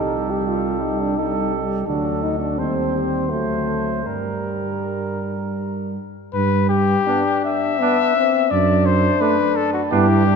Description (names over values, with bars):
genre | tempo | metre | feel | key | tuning
classical, brass quintet | 81 BPM | 3/4 | uneven beats, rubato | G minor, G major from 6.3 s | A4 = 441 Hz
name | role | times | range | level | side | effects
dark trumpet | melody | 0.0-10.4 s | F#4 to E5 | -22 LUFS | left 7 dB | none
clear flugelhorn | second line | 0.0-10.1 s | D4 to C5 | -27 LUFS | right 6 dB | none
mellow trombone | accompaniment | 0.0-10.1 s | F#3 to B3 | -29 LUFS | right 4 dB | none
warm French horn | accompaniment | 0.0-10.4 s | G3 to G4 | -24 LUFS | left 2 dB | none
dark tuba | bass | 0.0-10.4 s | C2 to G2 | -23 LUFS | right 4 dB | none
room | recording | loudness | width
wet church reverb, RT60 2.8 s | dark, warm production | -18 LUFS | side -5 dB against mid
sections
0.0-6.3 A section; 6.3-10.4 A section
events
none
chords
0.0 Cm6; 1.9 D; 2.6 Cm/Eb; 3.3 D7; 4.1 Gm; 6.3 G; 8.5 D/F#